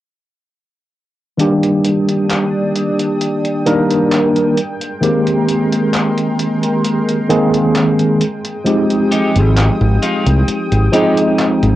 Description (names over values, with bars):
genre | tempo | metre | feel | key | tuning
vaporwave | 66 BPM | 4/4 | straight | unclear | A4 = 445 Hz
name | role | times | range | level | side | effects
tine electric piano | accompaniment | 1.4-11.8 s | Eb3 to Bb4 | -13 LUFS | equal | fast stereo tremolo, lush chorus, cassette tape, tape echo
lush unison pad | sustained chords | 1.8-11.8 s | Ab3 to Eb6 | -24 LUFS | equal | chorus, phaser, cassette tape
detuned 8-bit digital drum machine | drums | 1.4-11.8 s | handclaps, hi-hat | -23 LUFS | equal | cassette tape
electric guitar at the edge of break-up | riff | 9.1-11.2 s | Ab3 to G4 | -23 LUFS | left 2 dB | lush chorus, vintage 12-bit sampler grit, cassette tape, tape echo
modern bright fingered electric bass | bass | 9.4-11.8 s | Ab1 to C2 | -12 LUFS | equal | tube saturation
room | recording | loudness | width
moderate booth ambience, RT60 0.2 s | home recording on cassette | -12 LUFS | side -14 dB against mid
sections
1.4-11.8 A section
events
none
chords
1.4 Ebmaj7; 4.6 Abmaj9; 8.2 Fm9